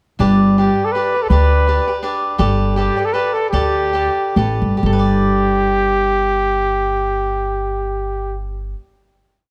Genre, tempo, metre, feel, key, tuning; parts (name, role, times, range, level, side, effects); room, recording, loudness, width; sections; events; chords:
mexican folk, mariachi; 127-166 BPM; 3/4; swing 55% on 8ths; G major; A4 = 440 Hz
cavaquinho; accompaniment; 0.2-8.9 s; D4 to D5; -24 LUFS; equal
upright bass; bass; 0.2-8.7 s; G1 to D2; -20 LUFS; equal
warm trumpet; melody; 0.6-8.4 s; G4 to B4; -20 LUFS; equal
light reverb; -17 LUFS; mono
0.2-4.8 A section; 4.8-7.6 final chord
slowing down 2.4-4.8
0.2 G; 2.4 Gadd9